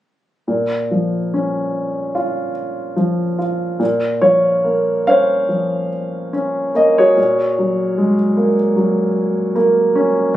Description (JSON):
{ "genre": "classical, lyrical solo piano", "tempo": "68-77 BPM", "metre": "4/4", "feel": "rubato", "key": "Bb minor", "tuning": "A4 = 440 Hz", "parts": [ { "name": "warm concert grand piano", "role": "solo", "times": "0.5-10.4 s", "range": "Bb2 to F5", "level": "-14 LUFS", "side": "equal", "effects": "none" } ], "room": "light reverb", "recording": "recorded on a phone in the room, studio ambience, compression", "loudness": "-15 LUFS", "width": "side -13 dB against mid", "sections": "0.5-3.8 A section; 3.8-10.4 B section", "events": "none", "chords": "0.5 Bbm; 3.8 Bbmadd9; 7.2 Gbadd9/Bb" }